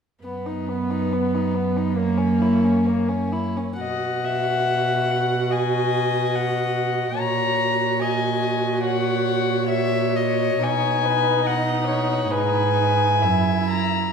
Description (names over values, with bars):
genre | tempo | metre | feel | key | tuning
classical, slow romantic movement for string quartet | 69 BPM | 4/4 | uneven beats, rubato | B major | A4 = 442 Hz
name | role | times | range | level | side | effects
rich violin | second line | 0.2-14.1 s | A#3 to F#5 | -26 LUFS | left 2 dB | none
warm viola | accompaniment | 0.2-14.1 s | A#3 to F#4 | -25 LUFS | equal | none
rich cello | bass | 0.2-14.1 s | F#2 to B2 | -25 LUFS | right 6 dB | none
warm violin | melody | 0.3-14.1 s | B4 to A#5 | -25 LUFS | left 6 dB | none
room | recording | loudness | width
wet recital hall reverb, RT60 1.7 s | minimal, uncompressed stereo recording | -19 LUFS | side -6 dB against mid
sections
0.2-3.8 A section; 3.8-14.1 B section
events
none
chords
0.2 B/F#; 2.0 F#7; 3.8 B; 7.2 F#/A#; 10.6 B; 12.3 G#m; 13.2 F#7